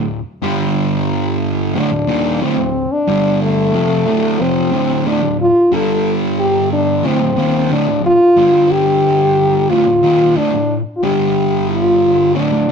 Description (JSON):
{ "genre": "metal", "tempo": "91 BPM", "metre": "4/4", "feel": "straight", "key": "unclear", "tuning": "A4 = 440 Hz", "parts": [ { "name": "fuzz guitar", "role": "riff", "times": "0.0-12.7 s", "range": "D2 to G3", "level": "-16 LUFS", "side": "right 1 dB", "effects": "distortion" }, { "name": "warm French horn", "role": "melody", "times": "1.8-12.7 s", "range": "A3 to A4", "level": "-14 LUFS", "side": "left 1 dB", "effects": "none" } ], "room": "moderate stone room reverb, RT60 1.0 s", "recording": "rough rehearsal-room recording, tube saturation", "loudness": "-12 LUFS", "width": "side -6 dB against mid", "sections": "0.0-12.7 A section", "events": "none", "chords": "0.4 G5; 1.7 D5; 3.1 G5; 3.7 Dm; 5.7 G5; 7.0 D5; 8.4 G5; 9.7 Dm; 11.0 G5" }